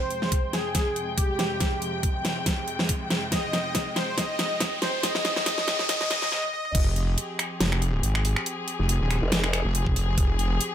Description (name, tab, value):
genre	heavy wobble dubstep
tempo	140 BPM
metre	4/4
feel	swing 55% on 16ths, half-time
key	F minor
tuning	A4 = 440 Hz
part	soft supersaw	melody	0.0-6.7 s	G4 to Eb5	-29 LUFS	equal	tape echo
part	dark chamber string section	sustained chords	0.0-10.7 s	F2 to G5	-33 LUFS	left 1 dB	sidechain pumping, low-pass filter
part	riser	sound effects	0.0-6.3 s	none	-34 LUFS	equal	none
part	dubstep drum kit	drums	0.1-10.7 s	crash cymbal, finger snaps, hi-hat, snare drum, toms	-27 LUFS	equal	overdrive
part	electronic kick drum	drums	0.3-6.8, 9.9-10.3 s	none	-26 LUFS	equal	none
part	wobble bass	bass	6.7-10.6 s	Eb1 to Ab1	-24 LUFS	equal	chorus, overdrive
part	formant-sweep wobble bass	bass	9.2-9.6 s	F1	-25 LUFS	equal	chorus, overdrive
room	light reverb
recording	high-pass filter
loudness	-23 LUFS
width	side -10 dB against mid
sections	0.0-6.7 A section; 6.7-10.7 B section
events	build-up 0.0-6.7; drum fill 0.0-6.3, 6.3-6.7; riser 0.0-6.3; filter sweep 0.0-6.7; break 6.3-6.7; drop 6.7-10.7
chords	0.0 Fmadd9